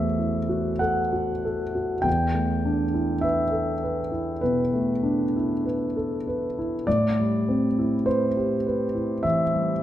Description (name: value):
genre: classical, impressionist solo piano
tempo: 48-52 BPM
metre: 4/4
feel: rubato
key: A dorian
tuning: A4 = 441 Hz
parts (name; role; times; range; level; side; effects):
- clear concert grand piano; solo; 0.0-9.8 s; E2 to G5; -22 LUFS; equal; none
room: moderate recital hall reverb, RT60 1.5 s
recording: none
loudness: -22 LUFS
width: side -12 dB against mid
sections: 0.0-9.8 A section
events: none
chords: 0.0 Am6; 2.1 E7sus4; 6.9 Am11